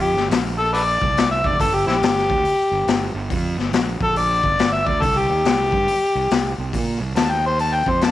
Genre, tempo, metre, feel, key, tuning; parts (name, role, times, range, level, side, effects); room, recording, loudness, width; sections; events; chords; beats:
blues rock power trio and southern rock; 140 BPM; 4/4; swing 64% on 8ths; A4 = 440 Hz
overdriven harmonica; melody; 0.0-8.1 s; C4 to A5; -19 LUFS; left 2 dB
fuzz fingered electric bass; bass; 0.0-8.1 s; F1 to Bb2; -24 LUFS; right 3 dB; overdrive
raw garage drum kit; drums; 0.2-8.1 s; hi-hat, kick drum, snare drum; -22 LUFS; left 3 dB
moderate spring reverb, RT60 1.4 s, small room ambience; 1960s-style stereo; -17 LUFS; side -14 dB against mid
0.0-8.1 A section
harmonica solo 0.0-8.1
0.0 Gm; 5.0 C5; 6.7 Cm7 (rootless)
0.30 0.73 1.16 | 1.59 2.02 2.44 2.87 | 3.30 3.73 4.16 4.58 | 5.01 5.44 5.87 6.30 | 6.73 7.16 7.58 8.01